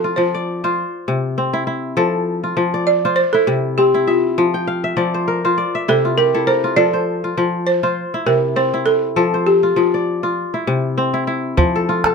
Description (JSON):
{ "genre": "west african traditional, West African string and xylophone music", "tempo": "100 BPM", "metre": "4/4", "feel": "swing 56% on 16ths", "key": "F major", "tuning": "A4 = 441 Hz", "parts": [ { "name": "balafon", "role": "melody", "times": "0.0-10.3 s", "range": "F4 to D5", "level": "-17 LUFS", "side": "right 1 dB", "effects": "none" }, { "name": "kora", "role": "arpeggios", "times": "0.0-12.1 s", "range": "C3 to G5", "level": "-18 LUFS", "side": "left 2 dB", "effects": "none" }, { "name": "calabash", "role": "percussion", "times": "11.6-12.1 s", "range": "none", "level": "-15 LUFS", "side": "right 3 dB", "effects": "none" } ], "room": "light reverb", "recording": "close, detailed microphones", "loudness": "-15 LUFS", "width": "side -5 dB against mid", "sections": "0.0-11.6 A section", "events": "kora fill 4.5-6.8", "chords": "0.0 F; 0.8 C; 2.0 F; 3.2 C; 4.4 Dm11/F; 5.6 C; 6.8 F; 8.0 C; 9.2 F; 10.4 C; 11.6 F", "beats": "0.17 0.77 1.37 | 1.97 2.57 3.17 3.77 | 4.37 4.97 5.57 6.17 | 6.77 7.37 7.97 8.57 | 9.18 9.78 10.38 10.98 | 11.58" }